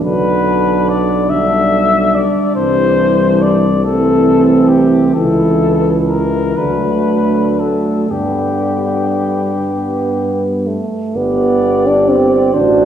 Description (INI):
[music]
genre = classical, hymn-like piece for brass band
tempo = 38-48 BPM (dotted quarters)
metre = 6/8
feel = rubato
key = G major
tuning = A4 = 439 Hz
[part]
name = warm flugelhorn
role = melody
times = 0.0-12.8 s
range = G4 to E5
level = -17 LUFS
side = left 5 dB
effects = none
[part]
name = warm French horn section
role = second line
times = 0.0-12.8 s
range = A3 to F#4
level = -17 LUFS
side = right 5 dB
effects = none
[part]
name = dark trombone section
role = accompaniment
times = 0.0-12.8 s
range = E3 to G4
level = -20 LUFS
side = left 1 dB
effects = none
[part]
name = warm euphonium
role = accompaniment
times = 0.0-12.8 s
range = D3 to D4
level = -18 LUFS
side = right 2 dB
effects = none
[part]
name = clear tuba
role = bass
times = 0.1-12.8 s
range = G1 to G2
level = -18 LUFS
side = left 1 dB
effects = none
[sound]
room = wet scoring stage reverb, RT60 1.6 s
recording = heard from further back in the room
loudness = -11 LUFS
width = side -9 dB against mid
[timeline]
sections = 0.0-11.2 A section; 11.2-12.8 A section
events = none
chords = 0.0 Bm; 1.3 G/B; 2.6 C; 3.9 Am/C; 5.2 C#m6; 6.6 D; 8.1 G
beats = | 0.05 1.31 | 2.56 3.85 | 5.16 6.57 | 8.10 9.66 | 11.16 12.54